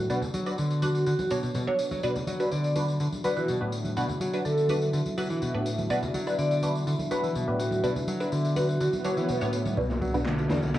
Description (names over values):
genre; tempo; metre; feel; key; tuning
breakbeat, breaks; 124 BPM; 4/4; straight; B minor; A4 = 442 Hz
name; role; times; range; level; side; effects
vibraphone with medium hard mallets; melody; 0.0-9.2 s; F#4 to D5; -30 LUFS; equal; small speaker sound, vintage 12-bit sampler grit, cassette tape, tape echo
dark analog pad; sustained chords; 0.0-10.8 s; B3 to E5; -34 LUFS; left 1 dB; chorus, sidechain pumping, cassette tape
modern bright picked electric bass; riff; 0.0-10.8 s; A2 to F#3; -29 LUFS; equal; overdrive, low-pass filter, cassette tape
filtered dub chord stab; stabs; 0.1-10.6 s; D4 to C#5; -32 LUFS; right 1 dB; phaser, wide subtle chorus, cassette tape, tape echo
electronic tambourine and handclaps; drums; 0.1-10.8 s; none; -42 LUFS; left 2 dB; high-pass filter on perc, cassette tape, high-pass filter on snare, high-pass filter on room
congas; percussion; 0.2-9.8 s; none; -36 LUFS; right 1 dB; none
swell and riser; sound effects; 8.9-10.8 s; none; -35 LUFS; right 1 dB; none
fat analog bass; bass; 9.8-10.8 s; B1 to B2; -30 LUFS; equal; none
crunchy breakbeat drum kit; drums; 9.8-10.8 s; kick drum, ride cymbal, snare drum; -32 LUFS; left 1 dB; low-pass filter on kick, cassette tape, low-pass filter on cymbals, low-pass filter on snare, low-pass filter on room
room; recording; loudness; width
moderate spring reverb, RT60 1.6 s, small room ambience; home recording on cassette, studio reverb; -25 LUFS; side -14 dB against mid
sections
0.0-9.8 A section; 9.8-10.8 B section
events
filter sweep on analog synth pad 0.0-9.8; swell 8.9-9.8; build-up 9.8-10.8; filter sweep on drum 9.8-10.8; filter sweep on synth stab 9.8-10.8; filter sweep 9.8-10.8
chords
0.0 Bm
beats
| 0.10 0.58 1.06 1.55 | 2.03 2.52 3.00 3.48 | 3.97 4.45 4.93 5.42 | 5.90 6.39 6.87 7.35 | 7.84 8.32 8.81 9.29 | 9.77 10.26 10.74